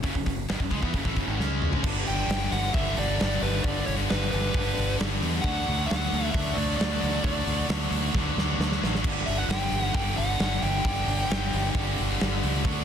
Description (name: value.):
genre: heavy metal.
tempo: 133 BPM.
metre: 4/4.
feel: straight.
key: unclear.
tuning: A4 = 440 Hz.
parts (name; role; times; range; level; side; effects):
distorted electric guitar; riff; 0.0-12.8 s; F#2 to C#4; -32 LUFS; left 15 dB; overdrive.
tight distorted guitar; riff; 0.0-12.8 s; F#2 to D4; -32 LUFS; right 15 dB; distortion.
growling fingered electric bass; bass; 0.0-12.8 s; F#1 to E2; -30 LUFS; equal; overdrive.
big rock drum kit; drums; 0.0-12.8 s; crash cymbal, hi-hat, kick drum, snare drum, toms; -29 LUFS; equal; none.
dark smooth lead guitar; melody; 2.1-12.4 s; B4 to G5; -31 LUFS; equal; overdrive.
room: small room ambience.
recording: dense, heavily limited modern master.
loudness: -24 LUFS.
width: side -8 dB against mid.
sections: 0.0-1.8 A section; 1.8-12.8 B section.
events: drum fill 1.4-1.8, 8.1-9.0.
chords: 0.0 F#m; 1.4 C#5; 1.8 G; 5.4 D; 9.0 G5.